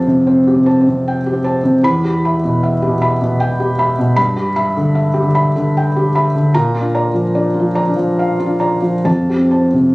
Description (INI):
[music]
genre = neoclassical minimalist piano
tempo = 66-77 BPM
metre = 3/4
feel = rubato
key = unclear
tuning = A4 = 440 Hz
[part]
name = felt-muted upright piano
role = solo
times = 0.0-9.9 s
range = E2 to B5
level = -12 LUFS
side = equal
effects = none
[sound]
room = light reverb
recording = recorded on a phone in the room, studio reverb, compression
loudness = -12 LUFS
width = side -22 dB against mid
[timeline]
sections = 0.0-9.9 A section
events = none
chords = 0.0 Fadd9; 1.8 Em; 4.2 G6; 6.5 Bb; 9.1 Fadd9